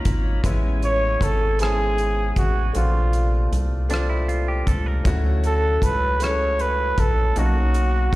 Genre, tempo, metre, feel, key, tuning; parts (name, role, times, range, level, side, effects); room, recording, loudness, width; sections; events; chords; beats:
slow six-eight R&B; 52 BPM (dotted quarters); 6/8; straight; A major; A4 = 438 Hz
clear grand piano; accompaniment; 0.0-8.2 s; G#3 to A4; -29 LUFS; left 2 dB; slapback echo
tonewheel organ; sustained chords; 0.0-8.2 s; Bb2 to B5; -36 LUFS; equal; overdrive, slow rotary speaker
rubbery square bass; bass; 0.1-8.2 s; G#1 to D2; -21 LUFS; equal
damped 70s drum kit; drums; 0.1-8.2 s; hi-hat, kick drum, rim click; -23 LUFS; equal
clear flugelhorn; melody; 0.8-8.2 s; F4 to C#5; -23 LUFS; right 1 dB; slapback echo
semi-hollow electric guitar; second line; 3.9-5.2 s; D4 to Bb4; -30 LUFS; right 3 dB; slapback echo
small room ambience; live gig heard through the venue's PA, recital hall reverb; -18 LUFS; side -18 dB against mid
0.4-8.2 A section
flugelhorn solo 0.4-8.2
0.4 Amaj9; 2.7 Bbmaj9; 5.1 Dmaj9; 7.4 Bmaj9
| 0.44 1.59 | 2.75 3.90 | 5.05 6.21 | 7.36